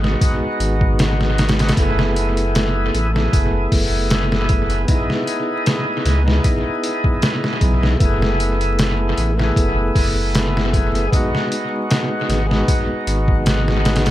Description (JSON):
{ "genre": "trip hop", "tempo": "77 BPM", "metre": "4/4", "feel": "swing 53% on 16ths", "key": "F# dorian", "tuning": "A4 = 440 Hz", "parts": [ { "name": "tonewheel organ", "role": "accompaniment", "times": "0.0-14.1 s", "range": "G#3 to G#4", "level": "-21 LUFS", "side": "equal", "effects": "overdrive, slow rotary speaker, harmonic tremolo, tape echo" }, { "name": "warm sub bass", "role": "bass", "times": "0.0-14.1 s", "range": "F#1 to C#2", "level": "-19 LUFS", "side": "equal", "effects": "none" }, { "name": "trip hop sampler-style drum kit", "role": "drums", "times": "0.0-14.1 s", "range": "hi-hat, kick drum, snare drum", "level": "-18 LUFS", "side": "equal", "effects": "dub echo" } ], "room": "light reverb", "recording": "echo-heavy mix, vinyl crackle", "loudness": "-15 LUFS", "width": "side -14 dB against mid", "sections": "0.0-14.1 A section", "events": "none", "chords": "0.0 G#m7; 1.8 F#m11; 4.9 C#m7 (rootless); 8.0 F#m11; 11.1 G#m7", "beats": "0.21 0.99 | 1.77 2.54 3.33 4.10 | 4.88 5.66 6.44 7.22 | 8.00 8.78 9.56 10.34 | 11.12 11.90 12.68 13.46" }